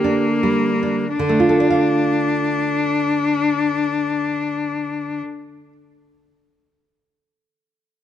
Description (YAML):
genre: romantic duo for cello and classical guitar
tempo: 42 BPM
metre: 4/4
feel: rubato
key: D minor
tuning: A4 = 439 Hz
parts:
  - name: rich cello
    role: melody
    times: 0.0-5.2 s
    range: Bb3 to D4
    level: -20 LUFS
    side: left 4 dB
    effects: none
  - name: nylon-string guitar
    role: accompaniment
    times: 0.0-5.7 s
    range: D3 to F5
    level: -20 LUFS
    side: right 3 dB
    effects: none
room: light reverb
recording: close, detailed microphones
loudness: -17 LUFS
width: side -10 dB against mid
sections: 0.0-1.2 A section; 1.2-6.8 B section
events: slowing down 0.0-1.2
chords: 0.0 Gm/D; 1.2 Dm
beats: | 1.18 2.60 4.02 5.43